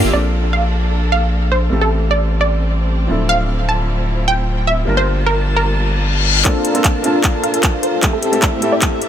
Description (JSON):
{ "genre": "future bass", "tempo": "152 BPM", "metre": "4/4", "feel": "half-time", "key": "unclear", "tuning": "A4 = 440 Hz", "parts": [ { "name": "wide unison pluck", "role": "melody", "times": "0.0-9.1 s", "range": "A4 to A5", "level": "-20 LUFS", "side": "right 2 dB", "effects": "sidechain pumping, tape echo" }, { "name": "clear studio string section", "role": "sustained chords", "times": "0.0-9.1 s", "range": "A2 to A5", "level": "-26 LUFS", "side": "equal", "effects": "sidechain pumping" }, { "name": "soft supersaw", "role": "riff", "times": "0.0-0.1, 6.4-9.0 s", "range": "Bb3 to A5", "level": "-20 LUFS", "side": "equal", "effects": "vintage 12-bit sampler grit, sidechain pumping, low-pass filter, tape echo" }, { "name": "saturated sub bass", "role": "bass", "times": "0.0-6.4 s", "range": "D1 to Bb1", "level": "-17 LUFS", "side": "equal", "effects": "sidechain pumping" }, { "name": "felt-muted upright piano", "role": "accompaniment", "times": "0.1-9.1 s", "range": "F3 to A5", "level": "-24 LUFS", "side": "equal", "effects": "sidechain pumping, tape echo" }, { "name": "reverse cymbal and riser", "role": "sound effects", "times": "5.9-9.1 s", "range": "none", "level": "-22 LUFS", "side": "left 6 dB", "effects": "none" }, { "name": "electronic kick drum", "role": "drums", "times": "6.4-8.9 s", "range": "none", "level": "-17 LUFS", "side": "equal", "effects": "none" }, { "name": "trap drum kit", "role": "drums", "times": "6.4-9.1 s", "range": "handclaps, hi-hat", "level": "-21 LUFS", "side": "equal", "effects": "none" } ], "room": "light reverb", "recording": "none", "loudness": "-13 LUFS", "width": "side -9 dB against mid", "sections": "0.1-6.5 A section; 6.5-9.1 B section", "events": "reverse cymbal 5.9-6.5; build-up 6.5-9.1; drum fill 6.5-9.1; filter sweep on supersaw synth 6.5-9.1", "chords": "0.1 Bbmaj7; 1.7 Am7; 3.1 Dm7; 4.9 Gm7; 6.5 Bbmaj7; 8.0 Am7" }